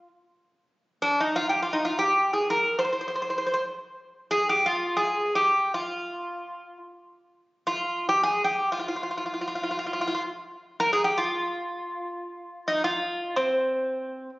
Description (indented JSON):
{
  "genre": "Turkish makam ensemble",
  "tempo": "free time",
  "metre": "none",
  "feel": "none",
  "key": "unclear",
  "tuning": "A4 = 440 Hz",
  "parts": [
    { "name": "Greek bouzouki", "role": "solo", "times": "0.0-14.3 s", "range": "C4 to C5", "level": "-24 LUFS", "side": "equal", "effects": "none" }
  ],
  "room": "moderate scoring stage reverb, RT60 1.9 s",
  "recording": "recorded on a phone in the room, studio reverb, compression, nothing above 7.5 kHz",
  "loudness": "-24 LUFS",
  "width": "side -21 dB against mid",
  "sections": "0.0-14.4 A section",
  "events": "none",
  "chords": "none"
}